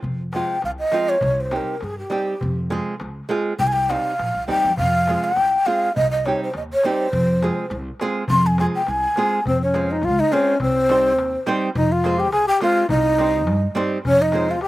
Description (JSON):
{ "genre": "balkan folk, Balkan wedding band", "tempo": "103 BPM", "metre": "2/4", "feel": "straight", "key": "F minor", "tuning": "A4 = 440 Hz", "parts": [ { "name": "upright bass", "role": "bass", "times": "0.0-14.7 s", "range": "Bb1 to G2", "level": "-25 LUFS", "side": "equal", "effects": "none" }, { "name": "darbuka", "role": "percussion", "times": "0.0-14.7 s", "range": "none", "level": "-28 LUFS", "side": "left 1 dB", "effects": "none" }, { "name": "breathy mellow ney", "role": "melody", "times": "0.3-14.7 s", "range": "G4 to C6", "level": "-20 LUFS", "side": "equal", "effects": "slapback echo" }, { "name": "nylon-string guitar", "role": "accompaniment", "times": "0.3-14.6 s", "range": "F3 to C5", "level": "-24 LUFS", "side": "right 3 dB", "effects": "none" }, { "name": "mellow clarinet", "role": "second line", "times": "9.5-14.7 s", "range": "C4 to Ab4", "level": "-22 LUFS", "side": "left 3 dB", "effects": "none" } ], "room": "little or no reverb", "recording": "recorded outdoors, with no room sound", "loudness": "-18 LUFS", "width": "side -16 dB against mid", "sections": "0.0-9.5 A section; 9.5-14.7 B section", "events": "speeding up 0.0-14.7; ney solo 0.0-9.5", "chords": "0.0 Fm; 1.2 Cm; 2.4 Fm; 3.6 Cm; 4.8 Fm; 6.0 Cm; 7.1 Fm; 10.6 Cm; 11.8 Fm; 12.9 Cm; 14.0 Fm" }